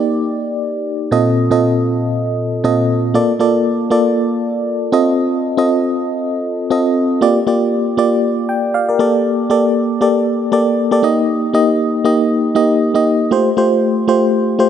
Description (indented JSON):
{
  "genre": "pop",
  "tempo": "118 BPM",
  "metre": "4/4",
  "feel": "swing 55% on 16ths",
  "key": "Bb major",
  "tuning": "A4 = 441 Hz",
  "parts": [
    { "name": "FM electric piano with auto-pan", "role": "solo", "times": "0.0-14.7 s", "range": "Bb2 to G5", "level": "-13 LUFS", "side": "equal", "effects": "none" }
  ],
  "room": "moderate lush hall reverb, RT60 2.8 s",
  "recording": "none",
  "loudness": "-13 LUFS",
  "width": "side -9 dB against mid",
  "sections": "0.0-7.2 A section; 7.2-14.7 B section",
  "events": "none",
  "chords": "0.0 Ebmaj7/Bb; 1.1 F7/Bb; 3.2 Bbmaj7; 4.9 F7; 7.2 Bb6; 9.0 Gmadd9; 11.0 Eb; 13.3 Fadd9"
}